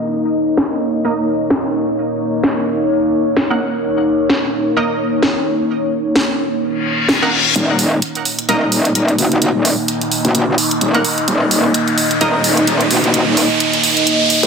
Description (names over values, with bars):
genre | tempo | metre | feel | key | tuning
bass house | 129 BPM | 4/4 | swing 57% on 16ths | Eb minor | A4 = 440 Hz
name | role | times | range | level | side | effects
deep dark ambient pad | sustained chords | 0.0-14.5 s | Bb3 to Eb5 | -17 LUFS | equal | chorus, built-in reverb, vintage 12-bit sampler grit
house drum kit | drums | 0.6-14.5 s | hi-hat, snare drum | -19 LUFS | equal | overdrive
orchestra-hit-like synth stab | stabs | 1.0-12.4 s | Bb3 to Gb5 | -22 LUFS | right 2 dB | built-in reverb, ping-pong delay
reverse cymbal and riser | sound effects | 6.8-14.5 s | none | -18 LUFS | left 1 dB | none
metallic wobble bass | bass | 7.6-14.5 s | Eb1 to Db2 | -15 LUFS | equal | chorus, overdrive, high-pass filter
room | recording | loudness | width
moderate lush hall reverb, RT60 2.2 s | dense, heavily limited modern master, low-pass filter | -13 LUFS | side -6 dB against mid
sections
0.0-7.6 A section; 7.6-14.5 B section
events
filter sweep on synth stab 0.0-7.6; filter sweep 0.0-7.6; reverse cymbal 6.8-7.6; build-up 7.6-14.5; riser 7.6-14.5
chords
0.0 Eb5